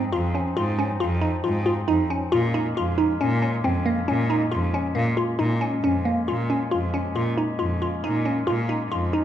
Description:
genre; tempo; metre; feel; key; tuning
contemporary instrumental, chamber music in an uneven meter; 137 BPM; 7/4; straight; Bb minor; A4 = 440 Hz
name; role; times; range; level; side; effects
warm woodwind section; sustained chords; 0.0-9.2 s; F3 to Eb4; -31 LUFS; left 2 dB; none
glassy wavetable pluck; arpeggios; 0.0-9.2 s; Bb3 to F4; -24 LUFS; equal; chorus
bright cello; bass; 0.0-9.2 s; F2 to Bb2; -25 LUFS; equal; none
room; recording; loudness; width
moderate recital hall reverb, RT60 1.4 s; dark, warm production; -21 LUFS; side -10 dB against mid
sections
0.0-5.4 A section; 5.4-9.2 B section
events
none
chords
0.0 Dbmaj7/F; 2.3 Bbm7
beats
0.13 0.57 1.01 1.45 1.89 | 2.33 2.77 3.20 3.64 4.08 4.52 4.96 | 5.40 5.84 6.28 6.72 7.16 7.59 8.03 | 8.47 8.91

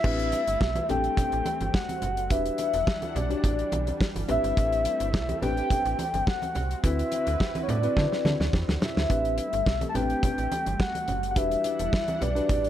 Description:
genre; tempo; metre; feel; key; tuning
early-eighties boogie funk; 106 BPM; 4/4; straight; unclear; A4 = 441 Hz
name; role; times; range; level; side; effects
soft octave-layered synth lead; melody; 0.0-12.7 s; C#5 to A5; -28 LUFS; left 1 dB; chorus, phaser
tine electric piano; accompaniment; 0.0-12.7 s; C4 to D5; -32 LUFS; left 4 dB; medium stereo tremolo
lush unison pad; sustained chords; 0.0-12.7 s; D3 to F#5; -37 LUFS; right 1 dB; chorus, phaser
slap-like FM bass; bass; 0.0-12.7 s; E1 to D3; -30 LUFS; right 1 dB; none
damped 70s drum kit; drums; 0.0-12.7 s; crash cymbal, hi-hat, kick drum, snare drum; -28 LUFS; equal; none
congas; percussion; 0.3-12.6 s; none; -36 LUFS; right 3 dB; none
room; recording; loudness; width
small room ambience; none; -24 LUFS; side -11 dB against mid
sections
0.0-12.7 A section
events
drum fill 8.0-9.1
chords
0.0 Am11; 2.3 Em9; 4.3 Am11; 6.8 D13; 9.1 Am11; 11.4 Em9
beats
| 0.04 0.61 1.18 1.74 | 2.31 2.87 3.44 4.00 | 4.57 5.14 5.70 6.27 | 6.83 7.40 7.97 8.53 | 9.10 9.66 10.23 10.80 | 11.36 11.93 12.50

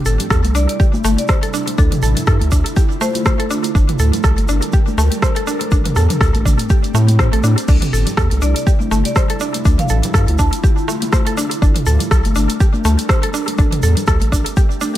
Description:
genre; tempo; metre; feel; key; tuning
afro house; 122 BPM; 4/4; swing 57% on 16ths; D minor; A4 = 440 Hz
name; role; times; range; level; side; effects
ethereal airy pad; sustained chords; 0.0-15.0 s; C3 to Bb4; -25 LUFS; right 1 dB; ensemble chorus, built-in reverb, phaser, sidechain pumping
mallet-like synth pluck; arpeggios; 0.1-14.9 s; A3 to C5; -23 LUFS; equal; chorus, sidechain pumping, tape echo
round analog bass; bass; 0.1-14.4 s; G1 to A2; -16 LUFS; equal; sidechain pumping
tube shaker; percussion; 0.1-15.0 s; none; -30 LUFS; right 5 dB; tape echo
deep house drum kit; drums; 0.2-15.0 s; crash cymbal, hi-hat, rim click, toms; -22 LUFS; right 1 dB; tape echo
congas; percussion; 0.2-14.9 s; none; -26 LUFS; left 3 dB; none
electronic kick drum; drums; 0.3-14.7 s; none; -15 LUFS; equal; none
marimba with medium hard mallets; melody; 0.5-3.7, 8.4-10.8 s; A4 to A5; -27 LUFS; left 1 dB; tape echo
room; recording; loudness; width
little or no reverb; echo-heavy mix; -13 LUFS; side -13 dB against mid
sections
0.0-15.0 A section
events
none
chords
0.0 C; 1.8 Dm7; 3.8 Gm; 5.7 Am7; 7.7 C; 9.7 Dm7; 11.6 Gm; 13.6 Am7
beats
0.31 0.80 1.29 | 1.78 2.27 2.77 3.26 | 3.75 4.24 4.73 5.23 | 5.72 6.21 6.70 7.19 | 7.68 8.18 8.67 9.16 | 9.65 10.14 10.63 11.13 | 11.62 12.11 12.60 13.09 | 13.59 14.08 14.57

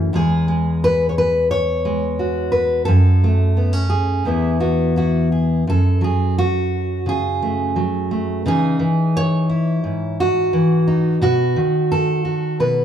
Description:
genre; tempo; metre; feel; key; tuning
folk, solo fingerstyle acoustic guitar; 87 BPM; 4/4; straight; unclear; A4 = 437 Hz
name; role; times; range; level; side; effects
fingerpicked steel-string acoustic guitar; solo; 0.0-12.8 s; E2 to C#5; -16 LUFS; equal; none
room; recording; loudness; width
moderate large studio reverb, RT60 0.9 s; band playing live in one room; -16 LUFS; side -9 dB against mid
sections
0.0-5.7 A section; 5.7-12.8 B section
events
none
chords
0.1 Eadd9; 2.9 F#m; 4.2 Eadd9; 5.7 F#madd9; 8.5 C#madd9; 11.2 B7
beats
| 0.13 0.82 1.50 2.19 | 2.87 3.56 4.25 4.96 | 5.67 6.37 7.07 7.77 | 8.46 9.15 9.84 10.53 | 11.21 11.89 12.58

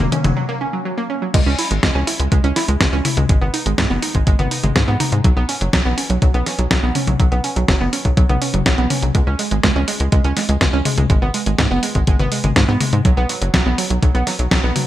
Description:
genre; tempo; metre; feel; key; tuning
italo disco; 123 BPM; 4/4; straight; unclear; A4 = 440 Hz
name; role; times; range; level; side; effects
analog pluck; arpeggios; 0.0-14.9 s; F#3 to E4; -21 LUFS; right 3 dB; chorus, digital delay
tight sequencer bass; bass; 0.0-14.7 s; E1 to G#2; -19 LUFS; equal; none
clean 12-bit digital drum machine; drums; 0.0-14.9 s; crash cymbal, hi-hat, snare drum, toms; -20 LUFS; left 2 dB; none
electronic kick drum; drums; 1.3-14.6 s; none; -17 LUFS; equal; none
room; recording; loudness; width
light reverb; bright 1980s-style digital production; -15 LUFS; side -13 dB against mid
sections
0.0-1.3 A section; 1.3-14.9 B section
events
drum fill 0.0-0.4; break 0.4-1.3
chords
0.0 F#; 1.3 C#m; 3.3 G#m; 5.2 Bsus2; 9.1 C#5; 11.1 G#m; 13.1 B5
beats
0.37 0.85 | 1.34 1.83 2.32 2.81 | 3.29 3.78 4.27 4.76 | 5.25 5.73 6.22 6.71 | 7.20 7.68 8.17 8.66 | 9.15 9.63 10.12 10.61 | 11.10 11.59 12.07 12.56 | 13.05 13.54 14.03 14.51

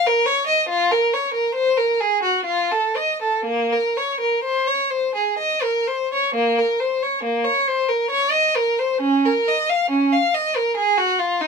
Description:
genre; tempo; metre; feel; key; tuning
classical, baroque-style suite movement for unaccompanied violin; 58-70 BPM; 3/4; rubato; Bb minor; A4 = 440 Hz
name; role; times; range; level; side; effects
rich violin; solo; 0.0-11.5 s; Bb3 to F5; -17 LUFS; equal; none
room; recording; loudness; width
little or no reverb; close, detailed microphones; -18 LUFS; side -5 dB against mid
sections
0.0-6.4 A section; 6.4-11.5 B section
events
none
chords
none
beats
| 0.69 1.56 2.46 | 3.45 4.43 5.40 | 6.35 7.23 8.09 | 9.00 9.89 10.75

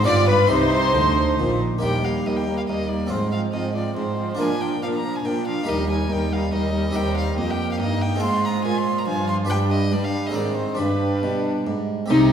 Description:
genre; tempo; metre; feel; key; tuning
classical, baroque-style concerto movement with solo episodes; 140 BPM; 3/4; straight; Eb major; A4 = 443 Hz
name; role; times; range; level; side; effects
warm violin; melody; 0.0-12.3 s; Eb4 to C6; -26 LUFS; left 1 dB; none
harpsichord; accompaniment; 0.0-12.3 s; Eb2 to C5; -27 LUFS; right 2 dB; none
warm chamber viola section; accompaniment; 0.0-12.2 s; Eb3 to F4; -27 LUFS; right 1 dB; none
rich chamber double bass section; bass; 0.0-1.8, 12.1-12.3 s; G1 to D2; -26 LUFS; right 2 dB; none
warm chamber cello section; bass; 0.0-12.3 s; Eb2 to G3; -25 LUFS; right 2 dB; none
warm chamber violin section; melody; 0.1-12.2 s; Eb4 to D6; -32 LUFS; left 4 dB; none
warm studio violin section; second line; 0.1-12.3 s; Bb3 to D5; -28 LUFS; left 2 dB; none
room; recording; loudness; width
wet recital hall reverb, RT60 1.3 s; heard from further back in the room; -19 LUFS; side -8 dB against mid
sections
0.0-1.8 A section; 1.8-12.1 B section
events
none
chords
0.1 G7; 0.5 Cm; 1.8 Eb; 3.1 Fm/Ab; 4.4 Bb; 5.7 Eb; 6.9 Cm/Eb; 8.2 Fm/Ab; 9.5 G; 10.3 Ab; 10.8 G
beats
0.07 | 0.51 0.95 1.39 | 1.82 2.25 2.68 | 3.11 3.54 3.96 | 4.39 4.82 5.25 | 5.67 6.10 6.53 | 6.95 7.37 7.80 | 8.22 8.64 9.07 | 9.50 9.92 10.35 | 10.79 11.22 11.66 | 12.10

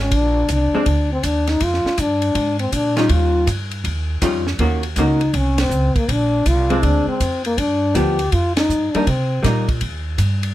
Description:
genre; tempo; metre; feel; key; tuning
jazz, small-group swing and bop; 161 BPM; 4/4; swing 65% on 8ths; Bb mixolydian; A4 = 438 Hz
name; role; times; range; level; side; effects
breathy trombone; melody; 0.0-9.4 s; Bb3 to G4; -19 LUFS; left 1 dB; none
upright bass; bass; 0.0-10.5 s; Bb1 to C3; -20 LUFS; right 1 dB; none
compact cocktail drum kit; drums; 0.1-10.5 s; hi-hat, kick drum, ride cymbal, snare drum; -25 LUFS; equal; none
vintage hollow-body jazz guitar; accompaniment; 0.7-9.7 s; Eb3 to Gb4; -20 LUFS; left 1 dB; none
room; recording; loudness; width
light reverb; none; -16 LUFS; side -14 dB against mid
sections
0.0-10.5 A section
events
band accent 5.5, 8.5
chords
0.1 Bb9; 3.1 Eb9; 4.6 Ebm7; 6.1 Bb9; 7.6 G7; 9.1 Cm7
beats
| 0.11 0.48 0.85 1.23 | 1.60 1.98 2.35 2.72 | 3.10 3.47 3.84 4.22 | 4.59 4.96 5.34 5.71 | 6.08 6.46 6.83 7.20 | 7.58 7.95 8.32 8.70 | 9.07 9.44 9.81 10.19

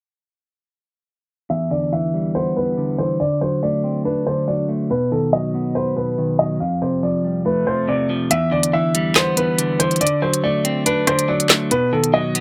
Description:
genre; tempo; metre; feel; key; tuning
hip hop, drill; 141 BPM; 4/4; half-time; E minor; A4 = 440 Hz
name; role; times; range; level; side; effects
warm upright piano; melody; 1.5-12.4 s; A4 to F5; -23 LUFS; equal; none
clean electric guitar; accompaniment; 1.5-12.4 s; E2 to B4; -23 LUFS; equal; none
drill drum kit; drums; 8.3-12.4 s; handclaps, hi-hat, rim click, snare drum; -19 LUFS; equal; none
room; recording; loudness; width
moderate booth ambience, RT60 0.2 s; low-pass filter; -19 LUFS; mono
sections
1.5-8.3 A section; 8.3-12.4 B section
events
filter sweep 1.5-8.3; kick muted 8.3-12.4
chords
1.5 Em7; 3.2 D7; 4.9 B; 6.6 Fadd9; 8.3 Em7; 10.0 D7; 11.7 B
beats
| 1.50 1.92 2.35 2.77 | 3.20 3.63 4.05 4.48 | 4.90 5.33 5.75 6.18 | 6.61 7.03 7.46 7.88 | 8.31 8.73 9.16 9.58 | 10.01 10.44 10.86 11.29 | 11.71 12.14

